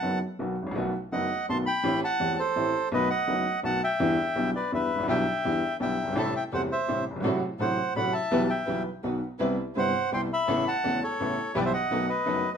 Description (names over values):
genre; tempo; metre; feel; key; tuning
tango; 167 BPM; 3/4; rubato; E minor; A4 = 442 Hz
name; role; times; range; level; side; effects
bandoneon; melody; 0.0-12.6 s; A4 to C6; -27 LUFS; equal; none
clear upright piano; accompaniment; 0.0-12.4 s; E1 to G4; -28 LUFS; equal; none
dark studio string section; stabs; 5.1-12.4 s; A2 to B4; -34 LUFS; right 1 dB; none
room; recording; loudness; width
wet studio reverb, RT60 0.7 s; minimal, uncompressed stereo recording; -25 LUFS; side -7 dB against mid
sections
0.0-12.6 A section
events
none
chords
0.0 B; 0.8 B7; 1.8 Am7; 2.9 B7; 4.0 Em7; 6.2 Am7; 7.2 F#dim/A; 8.3 Em/B; 9.0 B; 9.4 Cmaj7; 10.5 Aadd9; 11.5 Em/B; 11.9 B7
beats
0.02 0.39 | 0.75 1.12 1.48 | 1.84 2.20 2.56 | 2.92 3.27 3.63 | 3.99 4.35 4.71 | 5.08 5.44 5.80 | 6.16 6.52 6.88 | 7.24 7.59 7.95 | 8.31 8.67 9.03 | 9.39 9.75 10.11 | 10.47 10.83 11.19 | 11.54 11.90 12.26